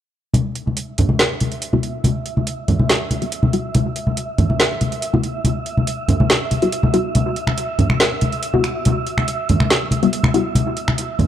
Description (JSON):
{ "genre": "deep dubstep", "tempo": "141 BPM", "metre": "4/4", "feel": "half-time", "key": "E minor", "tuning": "A4 = 439 Hz", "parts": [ { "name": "garage drum kit", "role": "drums", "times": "0.3-11.3 s", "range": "finger snaps, hi-hat, snare drum", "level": "-20 LUFS", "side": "equal", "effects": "overdrive" }, { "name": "congas", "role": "percussion", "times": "0.3-11.3 s", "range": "none", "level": "-18 LUFS", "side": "equal", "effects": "none" }, { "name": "wind-like tuned noise texture", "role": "texture", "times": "1.1-11.3 s", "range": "E5", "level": "-28 LUFS", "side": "right 5 dB", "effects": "built-in reverb" }, { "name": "filtered dub chord stab", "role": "stabs", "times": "1.7-10.4 s", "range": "G3 to F#4", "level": "-22 LUFS", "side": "left 3 dB", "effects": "phaser, cassette tape, dub echo" } ], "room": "light reverb, digital ambience", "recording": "dark, warm production", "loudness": "-16 LUFS", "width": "side -10 dB against mid", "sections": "0.3-11.3 A section", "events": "filter sweep on synth stab 0.3-11.3", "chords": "none" }